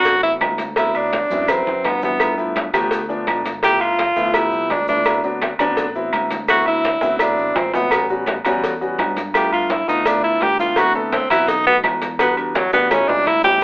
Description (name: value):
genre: Afro-Cuban jazz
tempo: 168 BPM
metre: 4/4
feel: straight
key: D mixolydian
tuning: A4 = 441 Hz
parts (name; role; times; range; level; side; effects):
- clear tenor saxophone; melody; 0.0-13.6 s; D3 to G4; -17 LUFS; equal; none
- warm grand piano; accompaniment; 0.0-13.6 s; F3 to B4; -23 LUFS; left 1 dB; none
- fingered electric bass; bass; 0.0-13.6 s; G1 to G2; -32 LUFS; equal; none
- maracas; percussion; 0.0-13.6 s; none; -44 LUFS; right 3 dB; none
- congas; percussion; 0.1-13.6 s; none; -28 LUFS; equal; none
- cowbell; percussion; 0.1-13.4 s; none; -25 LUFS; left 1 dB; none
- claves; percussion; 0.4-13.1 s; none; -25 LUFS; right 1 dB; none
- timbales and agogo bells; percussion; 0.4-13.5 s; none; -22 LUFS; right 1 dB; none
room: moderate studio reverb, RT60 0.5 s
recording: telephone sound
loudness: -15 LUFS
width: side -23 dB against mid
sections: 0.0-13.6 A section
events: tenor saxophone solo 0.0-13.6; drum fill 1.3-2.2, 7.0-7.9, 12.6-13.6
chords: 0.0 D13; 2.2 G13; 5.1 D13; 7.9 A13; 9.3 G13; 10.8 D13; 11.5 B7; 12.2 Em7; 12.9 A7